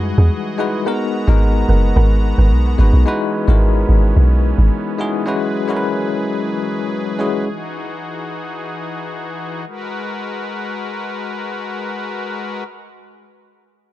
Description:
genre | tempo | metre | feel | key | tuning
amapiano | 109 BPM | 4/4 | straight | G# minor | A4 = 440 Hz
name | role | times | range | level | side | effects
bell-like tine electric piano | accompaniment | 0.0-7.5 s | G3 to B4 | -20 LUFS | left 3 dB | medium stereo tremolo
pipe organ, strings celeste | sustained chords | 0.0-12.6 s | E3 to A#5 | -26 LUFS | left 2 dB | none
deep log drum bass | bass | 0.0-4.7 s | F#1 to F#2 | -12 LUFS | equal | none
soft round pluck | stabs | 0.2-2.5 s | G#4 to F#5 | -28 LUFS | right 4 dB | chorus, tape echo
room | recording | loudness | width
little or no reverb | dark, warm production | -16 LUFS | side -15 dB against mid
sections
0.0-9.7 A section; 9.7-11.9 B section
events
drop 0.0-9.7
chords
0.0 Emaj9; 0.9 G#m9; 3.1 C#m11/G#; 5.3 F#9sus4; 7.5 Emaj9; 9.7 G#m9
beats
0.31 | 0.86 1.41 1.96 2.51 | 3.06 3.61 4.17 4.71 | 5.27 5.82 6.37 6.92 | 7.47 8.02 8.57 9.12 | 9.67 10.22 10.77 11.32

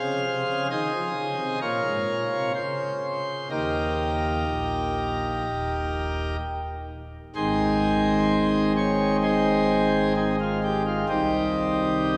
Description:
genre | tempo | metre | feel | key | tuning
classical, chorale-style piece for pipe organ | 64 BPM | 4/4 | rubato | Ab major | A4 = 440 Hz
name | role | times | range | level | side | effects
pipe organ, principal chorus | solo | 0.0-12.2 s | Eb1 to F5 | -25 LUFS | equal | none
room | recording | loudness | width
wet cathedral reverb, RT60 4.4 s | recorded in a church or concert hall | -25 LUFS | mono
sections
0.0-7.4 A section; 7.4-12.2 B section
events
none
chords
0.0 Fm7; 1.6 Bbm; 3.5 Eb; 7.4 Ab; 11.1 Cm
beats
0.69 1.61 2.54 | 3.51 4.47 5.45 6.40 | 7.36 8.30 9.23 10.16 | 11.09 12.01

